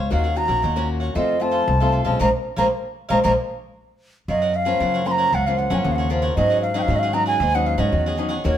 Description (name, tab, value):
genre	samba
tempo	115 BPM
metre	4/4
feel	straight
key	unclear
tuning	A4 = 436 Hz
part	cavaquinho	accompaniment	0.0-8.6 s	Eb4 to Gb5	-30 LUFS	equal	none
part	nylon-string guitar	accompaniment	0.0-8.6 s	Gb2 to Gb4	-24 LUFS	left 2 dB	none
part	upright bass	bass	0.0-8.6 s	Bb1 to Ab2	-23 LUFS	equal	none
part	wooden flute	melody	0.1-8.6 s	Db5 to C6	-22 LUFS	right 1 dB	none
room	moderate stone room reverb, RT60 1.0 s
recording	band playing live in one room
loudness	-18 LUFS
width	side -10 dB against mid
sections	0.0-4.3 A section; 4.3-8.6 B section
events	band accent 2.2-4.3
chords	0.1 Ebm7; 1.2 F; 2.2 Bbm7; 4.3 Gbmaj7; 6.4 Ab7sus4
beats	| 0.11 0.64 1.16 1.68 | 2.20 2.72 3.24 3.76 | 4.29 4.80 5.33 5.85 | 6.37 6.89 7.41 7.93 | 8.45